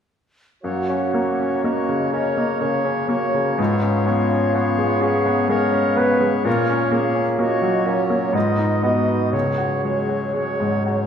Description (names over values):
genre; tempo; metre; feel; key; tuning
classical, romantic movement for piano and orchestra; 62 BPM; 3/4; uneven beats, rubato; F# major; A4 = 440 Hz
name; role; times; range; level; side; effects
bright baby grand piano; melody; 0.6-11.1 s; C#2 to F#4; -20 LUFS; left 2 dB; none
clear oboe; second line; 0.6-11.1 s; C#5 to D#5; -27 LUFS; right 1 dB; none
mellow hollow concert flute; second line; 0.6-11.1 s; C#5 to F#5; -27 LUFS; right 1 dB; none
warm clarinet; second line; 0.6-11.1 s; E#4 to B4; -26 LUFS; right 1 dB; none
mellow bassoon; accompaniment; 0.6-11.1 s; F#3 to B3; -29 LUFS; right 2 dB; none
room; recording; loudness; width
wet recital hall reverb, RT60 1.6 s; recorded in a church or concert hall; -18 LUFS; side -8 dB against mid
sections
0.6-11.1 A section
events
none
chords
0.6 F#; 3.6 C#7/G#; 6.5 F#/A#; 8.3 G#m; 9.3 C#sus4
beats
| 0.63 1.64 2.62 | 3.59 4.55 5.50 | 6.46 7.40 8.35 | 9.34 10.36